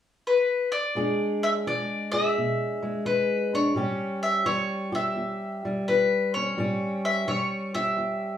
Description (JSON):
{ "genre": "acoustic country blues, solo or duo", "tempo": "85 BPM", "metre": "4/4", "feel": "swing 67% on 8ths", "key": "unclear", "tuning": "A4 = 440 Hz", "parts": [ { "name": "bowl-back mandolin", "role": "melody", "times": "0.3-8.4 s", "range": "B4 to E5", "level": "-26 LUFS", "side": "left 2 dB", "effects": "none" }, { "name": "fingerpicked steel-string acoustic guitar", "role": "accompaniment", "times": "1.0-8.4 s", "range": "E2 to G#4", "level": "-28 LUFS", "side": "equal", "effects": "none" } ], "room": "wet studio ambience, RT60 0.5 s", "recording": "band playing live in one room, studio reverb", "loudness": "-24 LUFS", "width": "side -10 dB against mid", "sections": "1.0-8.4 A section", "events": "none", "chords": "0.0 N.C.; 1.0 E7; 3.8 A7", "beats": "0.25 | 0.96 1.66 2.36 3.06 | 3.76 4.47 5.17 5.87 | 6.57 7.28 7.98" }